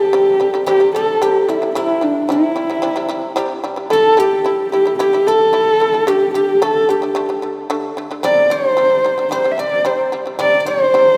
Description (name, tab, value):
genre	mongolian traditional, Mongolian folk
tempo	111 BPM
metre	4/4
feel	straight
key	C gong mode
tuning	A4 = 440 Hz
part	dark horsehead fiddle	melody	0.0-11.2 s	D4 to E5	-16 LUFS	equal	slapback echo
part	guzheng	second line	0.0-11.2 s	E4 to D5	-26 LUFS	equal	none
part	shamisen	arpeggios	0.0-11.2 s	C3 to E4	-26 LUFS	equal	none
room	wet lush hall reverb, RT60 3.1 s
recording	rough home demo mix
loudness	-16 LUFS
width	mono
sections	0.0-11.2 A section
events	none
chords	0.0 C5; 3.9 A5; 6.1 D5; 8.2 C5